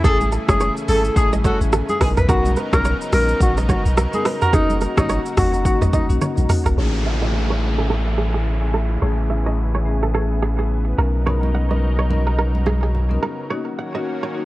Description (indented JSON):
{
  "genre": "afrobeats",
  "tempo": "107 BPM",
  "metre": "4/4",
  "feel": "swing 58% on 16ths",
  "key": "unclear",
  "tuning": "A4 = 441 Hz",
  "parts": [
    { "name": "breathy alto saxophone", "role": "melody", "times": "0.0-6.1 s", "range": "D#4 to B4", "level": "-22 LUFS", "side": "equal", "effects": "none" },
    { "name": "warm horn section", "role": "second line", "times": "0.0-2.1 s", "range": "F#3 to A4", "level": "-27 LUFS", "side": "equal", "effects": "none" },
    { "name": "marimba with medium mallets", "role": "accompaniment", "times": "0.0-14.4 s", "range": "A3 to A#4", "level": "-27 LUFS", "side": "left 4 dB", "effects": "low-pass filter" },
    { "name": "lush unison pad", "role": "sustained chords", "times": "0.0-14.4 s", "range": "C#3 to A#4", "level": "-29 LUFS", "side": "equal", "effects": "chorus, low-pass filter" },
    { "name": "kora", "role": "riff", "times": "0.0-14.3 s", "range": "G#4 to F#5", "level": "-26 LUFS", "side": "right 4 dB", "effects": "low-pass filter, digital delay" },
    { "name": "punchy sub bass", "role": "bass", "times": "0.0-13.2 s", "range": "F#1 to B1", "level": "-20 LUFS", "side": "equal", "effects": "none" },
    { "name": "afro-pop drum kit", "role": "drums", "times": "0.0-6.8 s", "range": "hi-hat, kick drum, rim click, shaker, toms", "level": "-20 LUFS", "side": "equal", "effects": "overdrive" },
    { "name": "congas", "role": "percussion", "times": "0.1-6.5, 11.3-13.2 s", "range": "none", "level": "-30 LUFS", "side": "right 2 dB", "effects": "none" },
    { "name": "downlifter", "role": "sound effects", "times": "6.8-11.3 s", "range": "none", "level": "-30 LUFS", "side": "equal", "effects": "none" }
  ],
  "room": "little or no reverb",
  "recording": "worn, warbling old tape, cassette tape, warbly pitch drift",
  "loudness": "-17 LUFS",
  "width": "side -17 dB against mid",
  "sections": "0.0-6.8 A section; 6.8-14.4 B section",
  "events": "drum fill 6.2-6.8; filter sweep 6.8-14.4; break 13.5-14.4",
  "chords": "0.0 Amaj7; 2.0 Bmaj9; 4.5 F#6; 6.8 Amaj7; 11.0 Bmaj9; 13.5 F#6",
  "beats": "| 0.05 0.61 1.17 1.73 | 2.29 2.85 3.41 3.97 | 4.53 5.09 5.65 6.21 | 6.78 7.33 7.90 8.46 | 9.02 9.58 10.14 10.70 | 11.26 11.82 12.38 12.94 | 13.50 14.06"
}